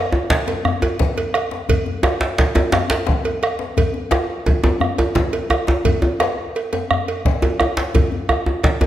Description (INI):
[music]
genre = west african traditional, West African drum ensemble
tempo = 115 BPM (dotted quarters)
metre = 12/8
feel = straight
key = none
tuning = none
[part]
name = djembe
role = percussion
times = 0.1-8.9 s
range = none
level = -19 LUFS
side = equal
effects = none
[part]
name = bombo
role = percussion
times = 0.3-8.8 s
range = none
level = -21 LUFS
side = right 1 dB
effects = none
[part]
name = cowbell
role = percussion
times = 0.3-8.9 s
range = none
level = -25 LUFS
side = right 4 dB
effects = none
[part]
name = djembe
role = percussion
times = 0.3-8.9 s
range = none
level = -25 LUFS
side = left 5 dB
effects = none
[sound]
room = wet recital hall reverb, RT60 1.7 s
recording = none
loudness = -16 LUFS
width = side -12 dB against mid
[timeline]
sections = 0.0-8.9 A section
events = none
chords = none